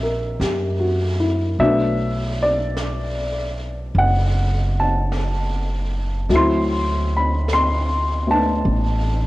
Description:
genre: jazz ballad.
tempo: 51 BPM.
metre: 4/4.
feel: swing 68% on 8ths.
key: unclear.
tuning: A4 = 440 Hz.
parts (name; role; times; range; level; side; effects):
warm baby grand piano; accompaniment; 0.0-9.3 s; E3 to C6; -20 LUFS; left 1 dB; cassette tape.
upright bass; bass; 0.0-9.3 s; F#1 to F#2; -21 LUFS; equal; none.
jazz brush drum kit; drums; 0.4-9.3 s; brushed snare drum, hi-hat, snare drum; -33 LUFS; right 1 dB; cassette tape.
room: light reverb, small room reverb.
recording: home recording on cassette.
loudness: -18 LUFS.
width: side -18 dB against mid.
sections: 0.0-9.3 A section.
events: none.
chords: 0.0 F#7b9; 1.6 Bm7; 6.3 D9.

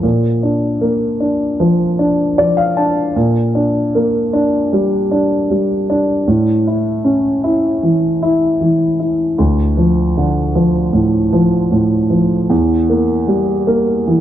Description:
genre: pop.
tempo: 77 BPM.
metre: 4/4.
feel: straight.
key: D minor.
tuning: A4 = 437 Hz.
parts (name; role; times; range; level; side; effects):
dark grand piano; solo; 0.0-14.2 s; D2 to A5; -12 LUFS; equal; none.
room: moderate plate reverb, RT60 3.0 s.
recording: dark, warm production.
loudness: -12 LUFS.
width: side -11 dB against mid.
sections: 0.0-14.2 A section.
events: grand piano fill 2.0-3.2.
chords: 0.0 Bb; 3.2 Gm/Bb; 6.3 A; 9.4 Dm; 12.5 Edim.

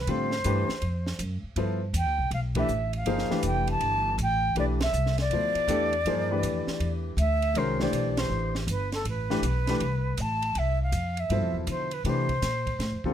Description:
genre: modal jazz.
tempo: 160 BPM.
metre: 4/4.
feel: swing 65% on 8ths.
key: F lydian.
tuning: A4 = 440 Hz.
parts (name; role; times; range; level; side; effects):
silver concert flute; melody; 0.0-13.1 s; A4 to A5; -29 LUFS; right 1 dB; none.
upright bass; bass; 0.0-13.1 s; F1 to D3; -29 LUFS; equal; none.
warm baby grand piano; accompaniment; 0.1-13.1 s; B2 to C5; -30 LUFS; left 2 dB; none.
compact cocktail drum kit; drums; 0.1-13.1 s; hi-hat, kick drum, ride cymbal, snare drum; -37 LUFS; right 2 dB; none.
room: light reverb.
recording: close, detailed microphones.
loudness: -25 LUFS.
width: side -10 dB against mid.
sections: 0.0-13.1 A section.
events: band accent 2.5, 4.7, 8.1.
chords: 0.0 Fmaj9; 1.6 Em7; 7.6 Fmaj9.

